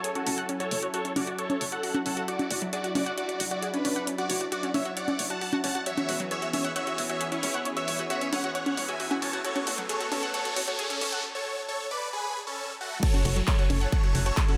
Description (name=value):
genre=uplifting trance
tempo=134 BPM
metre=4/4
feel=straight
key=F# minor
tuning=A4 = 440 Hz
part: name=big supersaw lead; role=melody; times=0.0-14.6 s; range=A3 to A5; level=-33 LUFS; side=equal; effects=phaser, sidechain pumping, low-pass filter, delay
part: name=lush unison pad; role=sustained chords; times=0.0-14.6 s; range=E3 to G#5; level=-40 LUFS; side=equal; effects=chorus, sidechain pumping
part: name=analog pluck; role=arpeggios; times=0.0-14.6 s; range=F#3 to F#5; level=-37 LUFS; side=equal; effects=chorus, sidechain pumping, delay
part: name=punchy analog drum machine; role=drums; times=0.0-14.6 s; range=congas, crash cymbal, handclaps, hi-hat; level=-34 LUFS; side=equal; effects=none
part: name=tight sequencer bass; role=bass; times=0.3-14.3 s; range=E1 to A1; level=-36 LUFS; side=equal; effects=sidechain pumping, high-pass filter
part: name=riser and downlifter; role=sound effects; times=7.6-14.6 s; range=none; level=-41 LUFS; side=equal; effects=none
part: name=electronic kick drum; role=drums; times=13.0-14.5 s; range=none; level=-27 LUFS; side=equal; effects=none
room=moderate huge ambient reverb, RT60 7.6 s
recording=high-pass filter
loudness=-29 LUFS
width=mono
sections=0.0-13.0 A section; 13.0-14.6 B section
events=build-up 0.0-13.0; filter sweep on supersaw synth 0.0-13.0; filter sweep on synth pluck 0.0-13.0; filter sweep 0.0-13.0; break 11.2-13.0; drop 13.0-14.6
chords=0.0 F#m7; 2.3 Dadd9/F#; 5.9 E6; 9.4 Aadd9; 13.0 F#m7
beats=0.04 | 0.49 0.94 1.39 1.83 | 2.28 2.73 3.18 3.62 | 4.07 4.52 4.97 5.42 | 5.86 6.31 6.76 7.21 | 7.66 8.10 8.55 9.00 | 9.45 9.89 10.34 10.79 | 11.24 11.69 12.13 12.58 | 13.03 13.48 13.92 14.37